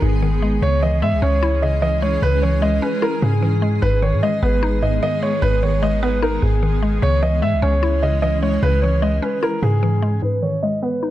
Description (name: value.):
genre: hip hop.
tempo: 150 BPM.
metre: 4/4.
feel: half-time.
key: G# minor.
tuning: A4 = 440 Hz.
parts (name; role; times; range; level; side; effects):
dark grand piano; melody; 0.0-11.1 s; G#4 to E5; -21 LUFS; right 1 dB; low-pass filter.
mallet-like synth pluck; accompaniment; 0.0-11.1 s; G#2 to E4; -22 LUFS; left 2 dB; chorus, low-pass filter.
granular cloud pad; sustained chords; 0.0-10.2 s; D#3 to G#4; -26 LUFS; right 1 dB; built-in reverb, low-pass filter.
clean 808-style bass; bass; 0.0-10.2 s; G#1 to G#2; -19 LUFS; equal; none.
room: digital ambience.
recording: none.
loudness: -16 LUFS.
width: side -14 dB against mid.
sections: 0.0-10.2 A section.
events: none.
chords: 0.0 G#m; 0.6 C#m; 3.8 G#m; 7.0 C#m; 10.2 G#m.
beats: 0.23 | 0.62 1.02 1.43 1.82 | 2.23 2.62 3.02 3.42 | 3.83 4.22 4.62 5.03 | 5.42 5.83 6.22 6.62 | 7.03 7.42 7.83 8.22 | 8.62 9.03 9.43 9.82 | 10.22 10.62 11.03.